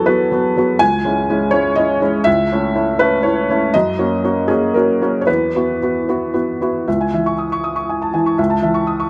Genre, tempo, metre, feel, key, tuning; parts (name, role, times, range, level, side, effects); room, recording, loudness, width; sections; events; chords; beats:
neoclassical minimalist piano; 112-124 BPM; 3/4; rubato; C# minor; A4 = 441 Hz
felt-muted upright piano; solo; 0.0-9.1 s; C#2 to D#6; -17 LUFS; equal
moderate recital hall reverb, RT60 1.9 s; close, detailed microphones; -17 LUFS; mono
0.0-6.9 A section; 6.9-9.1 B section
0.0 Esus2; 0.8 C#m; 2.3 A/C#; 3.7 F#; 5.3 Esus2; 6.9 C#m; 8.4 A/C#
0.32 | 0.80 1.29 1.78 | 2.27 2.75 3.24 | 3.74 4.24 4.75 | 5.28 5.81 6.34 | 6.87 7.38 7.89 | 8.38 8.88